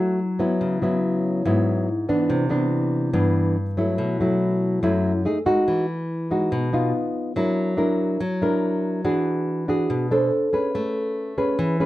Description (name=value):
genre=bossa nova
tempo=142 BPM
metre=4/4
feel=straight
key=E major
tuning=A4 = 440 Hz
part: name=nylon-string guitar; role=solo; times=0.0-11.9 s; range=F#2 to C5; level=-20 LUFS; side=equal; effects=none
room=moderate studio reverb, RT60 0.5 s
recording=none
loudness=-20 LUFS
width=side -16 dB against mid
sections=0.0-5.7 A section; 5.7-11.9 B section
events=none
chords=0.0 B7sus4; 0.6 C#m7; 2.3 Cmaj9; 4.0 B7sus4; 5.3 F#m69; 5.7 Emaj9; 6.9 B; 7.4 F#aug7; 9.0 E9; 10.3 Bm13; 10.7 Amaj9